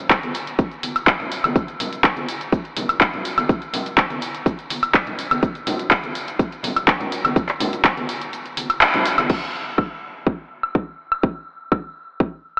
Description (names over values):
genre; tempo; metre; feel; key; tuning
house; 124 BPM; 4/4; straight; none; none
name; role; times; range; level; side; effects
punchy analog drum machine; drums; 0.0-12.6 s; cabasa, crash cymbal, handclaps, hi-hat, woodblock; -20 LUFS; equal; sidechain pumping on hats, sidechain pumping on perc, sidechain pumping on cymbals
electronic kick drum; drums; 0.1-12.3 s; none; -19 LUFS; equal; none
tambourine and congas; percussion; 0.1-9.3 s; none; -28 LUFS; equal; sidechain pumping on perc, low-pass filter on perc
room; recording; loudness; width
wet church reverb, RT60 3.6 s; dreamy mix soaked in reverb, AM radio sound; -18 LUFS; side -33 dB against mid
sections
0.0-9.3 A section; 9.3-12.6 B section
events
kick drops out 8.3-9.3; band accent 8.8; filter sweep 9.3-12.6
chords
none